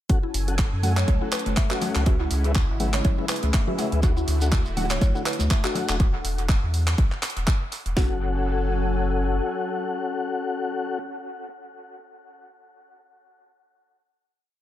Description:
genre	afro house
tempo	122 BPM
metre	4/4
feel	swing 56% on 16ths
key	F# minor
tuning	A4 = 440 Hz
part	warm analog pad	sustained chords	0.1-11.0 s	C#3 to G#5	-33 LUFS	left 1 dB	chorus, sidechain pumping
part	mallet-like synth pluck	arpeggios	0.1-8.2 s	E4 to F#5	-33 LUFS	right 1 dB	chorus, phaser, sidechain pumping, dub echo
part	mellow tonewheel organ	stabs	0.1-11.0 s	C#4 to F#5	-30 LUFS	left 4 dB	chorus vibrato, sidechain pumping, dub echo
part	house drum kit	drums	0.1-8.1 s	kick drum, snare drum	-21 LUFS	equal	none
part	house drum kit	drums	0.1-7.9 s	handclaps, hi-hat	-30 LUFS	right 1 dB	dub echo
part	round analog bass	bass	0.3-9.4 s	D1 to F#2	-25 LUFS	equal	sidechain pumping
part	congas	percussion	0.8-5.9 s	none	-32 LUFS	left 3 dB	none
part	shekere	percussion	4.0-6.0 s	none	-39 LUFS	right 3 dB	dub echo
room	light reverb, digital ambience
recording	echo-heavy mix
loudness	-21 LUFS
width	side -13 dB against mid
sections	0.1-8.0 drop; 8.0-11.9 final chord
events	drop 0.1-8.0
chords	0.1 F#m; 2.1 C#m7; 4.0 D; 6.0 E5; 8.0 F#m

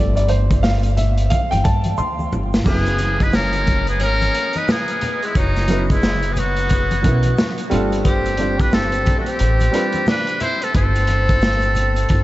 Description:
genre	hip hop, jazz-hop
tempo	89 BPM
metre	4/4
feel	swing 61% on 16ths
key	unclear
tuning	A4 = 437 Hz
part	warm grand piano	accompaniment	0.0-10.0 s	F#3 to C6	-24 LUFS	right 1 dB	wide subtle chorus
part	upright bass	bass	0.0-12.2 s	F#1 to G2	-20 LUFS	equal	none
part	crunchy breakbeat drum kit	drums	0.2-12.2 s	crash cymbal, hi-hat, kick drum, snare drum	-20 LUFS	equal	none
part	egg shaker and congas	percussion	0.2-12.2 s	none	-32 LUFS	left 1 dB	none
part	trumpet with metal mute	melody	2.7-12.2 s	D#4 to C5	-22 LUFS	equal	analog delay
part	clear tenor saxophone	second line	2.7-12.2 s	F#3 to E4	-26 LUFS	left 2 dB	none
room	moderate huge ambient reverb, RT60 8.3 s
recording	dreamy mix soaked in reverb, vinyl crackle, nothing above 7.8 kHz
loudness	-15 LUFS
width	side -16 dB against mid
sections	0.0-2.7 A section; 2.7-12.2 B section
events	grand piano solo 0.0-2.7; drum fill 2.0-2.7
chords	0.0 G9sus4; 2.7 F#9sus4; 7.7 G9sus4

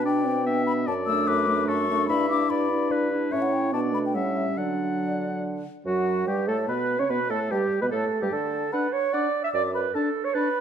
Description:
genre	quick classical-period movement for wind quintet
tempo	147 BPM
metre	3/4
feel	straight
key	D major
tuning	A4 = 440 Hz
part	mellow hollow concert flute	melody	0.0-10.6 s	D5 to E6	-29 LUFS	left 8 dB	none
part	clear oboe	second line	0.0-10.5 s	F#4 to A5	-33 LUFS	left 3 dB	none
part	mellow French horn	accompaniment	0.0-10.5 s	F#3 to D4	-29 LUFS	left 1 dB	none
part	warm clarinet	accompaniment	0.0-10.6 s	C#4 to E5	-28 LUFS	right 7 dB	none
part	dark bassoon	bass	0.0-9.9 s	F#2 to D3	-29 LUFS	right 1 dB	none
room	moderate recital hall reverb, RT60 1.3 s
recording	dark, warm production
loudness	-23 LUFS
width	side -8 dB against mid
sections	0.0-5.9 A section; 5.9-10.6 B section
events	none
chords	0.0 G/B; 0.9 D/F#; 2.1 Em7/G; 3.3 A7; 3.7 Bm; 4.1 A7; 4.6 D; 5.9 A13/F#; 7.1 G; 8.3 D; 9.5 D/F#

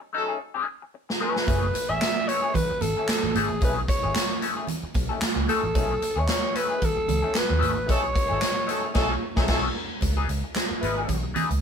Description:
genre	funk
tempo	112 BPM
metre	4/4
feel	swing 56% on 16ths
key	unclear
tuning	A4 = 440 Hz
part	semi-hollow electric guitar	accompaniment	0.0-11.5 s	D#3 to A#4	-30 LUFS	left 6 dB	wah
part	mellow horn section	second line	0.1-0.3, 7.9-11.2 s	F#3 to B4	-30 LUFS	equal	none
part	swinging big-band drum kit	drums	1.1-11.6 s	crash cymbal, handclaps, hi-hat, kick drum, snare drum	-26 LUFS	equal	none
part	growling alto saxophone	melody	1.2-9.5 s	G#4 to E5	-27 LUFS	equal	none
part	vintage muted picked electric bass	bass	1.5-11.6 s	F#1 to D#2	-28 LUFS	equal	none
part	congas	percussion	1.5-11.5 s	none	-33 LUFS	right 5 dB	none
room	moderate studio reverb, RT60 0.7 s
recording	band playing live in one room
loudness	-22 LUFS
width	side -7 dB against mid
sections	0.0-10.0 A section; 10.0-11.6 B section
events	band accent 0.0-1.5, 7.9-10.0; drum fill 0.4-1.5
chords	0.0 B13 (rootless); 1.5 F#m9 (rootless); 3.6 B13; 10.0 C#m9

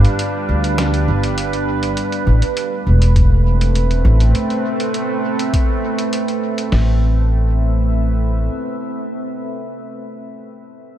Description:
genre	ambient dub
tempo	101 BPM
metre	4/4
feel	straight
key	A minor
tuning	A4 = 441 Hz
part	deep dark ambient pad	sustained chords	0.0-9.9 s	G3 to F5	-21 LUFS	right 2 dB	chorus, built-in reverb
part	upright bass	bass	0.0-8.5 s	E1 to D2	-14 LUFS	equal	none
part	lo-fi sampler-style drum kit	drums	0.0-6.7 s	hi-hat, snare drum	-28 LUFS	equal	small room ambience, dub echo
part	lo-fi sampler-style drum kit	drums	3.2-6.9 s	hi-hat, kick drum, snare drum	-17 LUFS	equal	small room ambience
room	light reverb, digital ambience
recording	none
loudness	-15 LUFS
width	side -12 dB against mid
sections	0.0-2.0 A section; 2.0-6.7 B section; 6.7-9.1 C section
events	break 0.0-2.0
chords	0.0 G7; 2.0 Amadd9

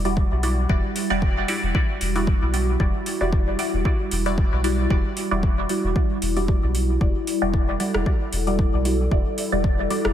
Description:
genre	dub techno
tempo	114 BPM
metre	4/4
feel	swing 55% on 16ths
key	E minor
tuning	A4 = 441 Hz
part	dark analog pad	sustained chords	0.0-10.1 s	G3 to A4	-28 LUFS	equal	chorus, phaser, sidechain pumping
part	soft dub sub bass	bass	0.0-10.1 s	E1 to B1	-24 LUFS	equal	sidechain pumping
part	filtered dub chord stab	stabs	0.1-10.1 s	G3 to D5	-26 LUFS	equal	phaser, sidechain pumping, dub echo
part	deep house drum kit	drums	0.1-10.1 s	hi-hat, rim click	-30 LUFS	right 1 dB	overdrive
part	electronic kick drum	drums	0.2-9.8 s	none	-21 LUFS	equal	overdrive
room	light reverb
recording	none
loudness	-20 LUFS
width	side -10 dB against mid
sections	0.0-10.1 A section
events	none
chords	0.0 Em9

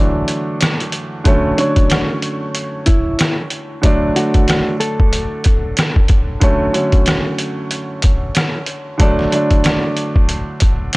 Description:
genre	hip hop, boom-bap hip-hop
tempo	93 BPM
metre	4/4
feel	swing 59% on 16ths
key	unclear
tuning	A4 = 441 Hz
part	warm upright piano	accompaniment	0.0-11.0 s	D3 to C#5	-19 LUFS	right 1 dB	cassette tape, high-pass filter, low-pass filter
part	trip hop sampler-style drum kit	drums	0.3-11.0 s	hi-hat, kick drum, rim click, snare drum	-14 LUFS	equal	none
part	mellow electric guitar	melody	1.6-6.4 s	D4 to A4	-23 LUFS	equal	high-pass filter, low-pass filter, analog delay
room	digital ambience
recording	dry, gritty hardware recording, cassette tape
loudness	-13 LUFS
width	side -23 dB against mid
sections	0.0-1.3 A section; 1.3-11.0 B section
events	none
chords	0.0 D; 1.3 Dmaj7; 3.8 D; 6.4 Dmaj7; 9.0 D

